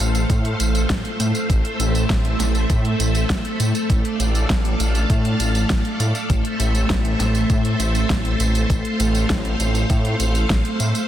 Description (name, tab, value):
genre	synthwave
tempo	100 BPM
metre	4/4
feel	straight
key	unclear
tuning	A4 = 440 Hz
part	string machine, full ensemble	sustained chords	0.0-11.1 s	A3 to F5	-23 LUFS	equal	ensemble chorus, sidechain pumping
part	dark detuned saw bass	bass	0.0-10.9 s	A1 to A2	-20 LUFS	equal	none
part	pop drum kit	drums	0.0-11.1 s	hi-hat, snare drum, tambourine	-26 LUFS	right 1 dB	overdrive
part	electronic kick drum	drums	0.3-10.6 s	none	-21 LUFS	equal	overdrive
room	light reverb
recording	dense, heavily limited modern master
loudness	-17 LUFS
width	side -11 dB against mid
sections	0.0-11.1 A section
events	none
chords	0.0 F/A; 1.5 C/A; 3.9 Dm/A; 6.3 Am; 8.7 F/A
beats	0.30 0.90 | 1.50 2.10 2.70 3.30 | 3.90 4.50 5.10 5.70 | 6.30 6.90 7.50 8.10 | 8.70 9.30 9.90 10.50